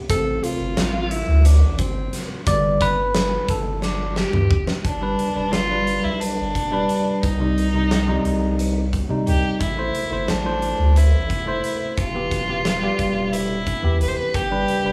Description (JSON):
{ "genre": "progressive instrumental, band music in an uneven meter", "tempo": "177 BPM (eighths)", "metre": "7/8", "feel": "straight", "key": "G mixolydian", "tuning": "A4 = 439 Hz", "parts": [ { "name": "bell-like tine electric piano", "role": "accompaniment", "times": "0.0-14.9 s", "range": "C3 to D5", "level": "-26 LUFS", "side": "equal", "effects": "none" }, { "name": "breathy alto saxophone", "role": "second line", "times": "0.1-4.9 s", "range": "C4 to A4", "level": "-28 LUFS", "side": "equal", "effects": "none" }, { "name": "round analog bass", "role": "bass", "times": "0.1-14.9 s", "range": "E1 to C3", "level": "-24 LUFS", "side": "equal", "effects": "none" }, { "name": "huge arena drum kit", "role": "drums", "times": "0.1-14.8 s", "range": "hi-hat, kick drum, snare drum, toms", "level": "-28 LUFS", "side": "equal", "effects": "none" }, { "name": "tube shaker", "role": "percussion", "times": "0.1-4.1 s", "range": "none", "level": "-45 LUFS", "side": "equal", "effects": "none" }, { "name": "warm violin", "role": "melody", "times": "4.8-14.9 s", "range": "D4 to C5", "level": "-27 LUFS", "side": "equal", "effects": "none" } ], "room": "moderate large studio reverb, RT60 0.9 s", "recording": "band playing live in one room, small room ambience", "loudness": "-21 LUFS", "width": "mono", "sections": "0.0-4.9 A section; 4.9-14.9 B section", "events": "tine electric piano solo 0.0-4.9; drum fill 3.8-4.9", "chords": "0.1 Am; 2.5 G; 7.2 Cm; 9.6 Am; 12.0 Em; 14.3 G" }